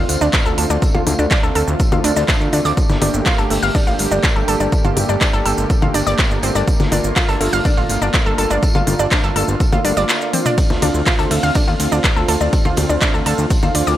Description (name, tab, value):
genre	melodic techno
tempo	123 BPM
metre	4/4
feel	straight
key	unclear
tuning	A4 = 443 Hz
part	lush unison pad	sustained chords	0.0-14.0 s	D3 to G4	-22 LUFS	right 1 dB	chorus, sidechain pumping
part	analog pluck	arpeggios	0.0-14.0 s	A3 to F5	-20 LUFS	equal	chorus, sidechain pumping, digital delay
part	fat analog bass	bass	0.0-13.9 s	G1 to Eb2	-20 LUFS	equal	sidechain pumping
part	house drum kit	drums	0.1-14.0 s	congas, handclaps, hi-hat, ride cymbal, shaker, toms	-21 LUFS	left 1 dB	studio reverb
part	raw garage drum kit	drums	0.1-14.0 s	hi-hat, snare drum, tambourine	-29 LUFS	equal	high-pass filter on hats, studio reverb, high-pass filter on snare, high-pass filter on perc, high-pass filter on room
part	electronic kick drum	drums	0.3-13.6 s	none	-17 LUFS	equal	studio reverb
room	light reverb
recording	none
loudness	-14 LUFS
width	side -13 dB against mid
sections	0.0-14.0 A section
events	drum fill 10.3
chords	0.0 Dm7; 2.8 Gmadd9; 10.6 Dm7